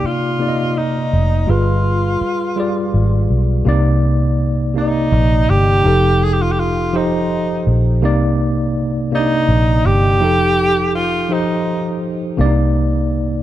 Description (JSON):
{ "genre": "slow six-eight R&B", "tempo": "55 BPM (dotted quarters)", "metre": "6/8", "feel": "straight", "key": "C minor", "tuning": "A4 = 440 Hz", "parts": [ { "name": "warm tenor saxophone", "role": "melody", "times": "0.0-12.1 s", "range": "Eb4 to Ab4", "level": "-18 LUFS", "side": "right 1 dB", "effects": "none" }, { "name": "tine electric piano", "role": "accompaniment", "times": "0.0-13.4 s", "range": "C3 to Eb5", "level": "-18 LUFS", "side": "equal", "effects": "overdrive, fast stereo tremolo" }, { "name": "vintage muted fingered electric bass", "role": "bass", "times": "0.0-13.4 s", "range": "F1 to C2", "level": "-16 LUFS", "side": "equal", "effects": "none" } ], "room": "light reverb, studio ambience", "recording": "dark, warm production", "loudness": "-14 LUFS", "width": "side -13 dB against mid", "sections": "0.0-3.7 A section; 3.7-13.4 B section", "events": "none", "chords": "0.0 Cm9; 1.5 G7b9; 3.7 Cm9; 5.8 F9; 8.0 Cm9; 10.2 F9; 12.4 Cm9" }